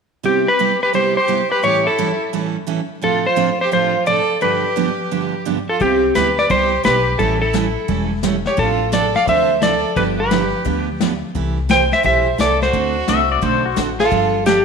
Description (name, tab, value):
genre	country, western swing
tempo	173 BPM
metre	4/4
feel	swing 65% on 8ths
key	C major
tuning	A4 = 441 Hz
part	clear fiddle	second line	0.2-14.6 s	C4 to D5	-22 LUFS	right 7 dB	none
part	picked steel-string acoustic guitar	accompaniment	0.2-14.6 s	G2 to A4	-22 LUFS	right 9 dB	none
part	clean lap steel guitar	melody	0.3-14.6 s	G4 to G5	-17 LUFS	left 2 dB	none
part	upright bass	bass	5.8-14.6 s	E1 to D2	-23 LUFS	left 2 dB	none
part	vintage brush drum kit	drums	5.8-14.6 s	brushed snare drum, hi-hat, kick drum, snare drum	-24 LUFS	left 9 dB	none
part	pedal steel guitar	second line	13.1-13.8 s	F#4 to E5	-19 LUFS	left 9 dB	none
room	wet echo chamber reverb, RT60 1.5 s, small room ambience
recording	1960s-style stereo with parts hard left and right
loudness	-15 LUFS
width	side -5 dB against mid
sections	0.2-5.8 A section; 5.8-14.6 B section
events	none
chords	0.2 Cmaj7; 1.6 A7; 3.0 Dm7/A; 4.4 G7; 5.8 Cmaj7; 7.2 A7; 8.6 Dm7/A; 10.0 G7; 11.3 C6; 12.7 D7; 14.1 G7sus4